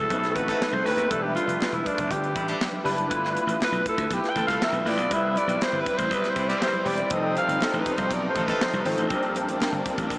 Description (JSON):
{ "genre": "polished 1980s jazz-funk pop", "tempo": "120 BPM", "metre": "4/4", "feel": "straight", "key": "unclear", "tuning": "A4 = 440 Hz", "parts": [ { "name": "breathy alto saxophone", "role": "melody", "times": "0.0-9.1 s", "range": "D4 to G5", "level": "-26 LUFS", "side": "equal", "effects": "none" }, { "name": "barky tine electric piano", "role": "accompaniment", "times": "0.0-10.2 s", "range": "F3 to E5", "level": "-28 LUFS", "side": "equal", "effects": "overdrive, ensemble chorus" }, { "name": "slap bass", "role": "bass", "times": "0.0-10.2 s", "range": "E1 to D#2", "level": "-30 LUFS", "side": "equal", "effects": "none" }, { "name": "tight funk drum kit", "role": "drums", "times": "0.1-10.2 s", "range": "hi-hat, kick drum, snare drum", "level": "-32 LUFS", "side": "equal", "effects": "none" }, { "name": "clear horn section", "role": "second line", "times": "0.4-8.6 s", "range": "G3 to A4", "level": "-35 LUFS", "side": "equal", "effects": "none" }, { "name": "congas", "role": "percussion", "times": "0.4-10.0 s", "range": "none", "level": "-42 LUFS", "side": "equal", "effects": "none" }, { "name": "rich studio string section", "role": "sustained chords", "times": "5.1-10.2 s", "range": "C3 to B4", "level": "-32 LUFS", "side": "equal", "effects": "none" } ], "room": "wet huge ambient reverb, RT60 8.0 s", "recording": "dreamy mix soaked in reverb, small speaker sound", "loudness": "-22 LUFS", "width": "side -22 dB against mid", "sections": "0.0-10.2 A section", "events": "alto saxophone solo 0.0-10.2", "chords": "0.1 B7b9; 1.1 Em7; 3.1 G13; 5.1 Cmaj7; 7.1 F7; 9.1 Bb69" }